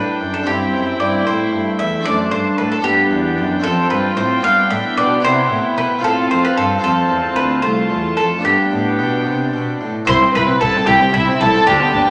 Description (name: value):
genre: classical, baroque-style concerto movement with solo episodes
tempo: 75 BPM (dotted quarters)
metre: 6/8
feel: straight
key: G major, C major from 3.6 s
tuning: A4 = 440 Hz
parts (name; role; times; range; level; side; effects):
- bowl-back mandolin; melody; 0.0-12.1 s; E4 to F5; -20 LUFS; equal; none
- rich chamber violin section; melody; 0.0-12.1 s; E5 to C6; -26 LUFS; equal; none
- warm chamber violin section; second line; 0.0-12.1 s; D4 to C5; -23 LUFS; equal; none
- harpsichord; accompaniment; 0.0-12.1 s; C2 to F4; -26 LUFS; equal; none
- warm chamber viola section; accompaniment; 0.0-12.1 s; A3 to E4; -24 LUFS; equal; none
- warm chamber cello section; bass; 0.0-12.0 s; C2 to C3; -28 LUFS; equal; none
- rich chamber double bass section; bass; 10.1-12.0 s; C2 to D2; -27 LUFS; equal; none
room: wet recital hall reverb, RT60 1.5 s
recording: none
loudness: -16 LUFS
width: mono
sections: 0.0-10.1 A section; 10.1-12.1 B section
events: none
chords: 0.5 Am7; 2.1 D7/F#; 2.8 G; 3.6 F; 4.4 G; 5.2 C; 6.0 F; 8.4 G; 10.1 C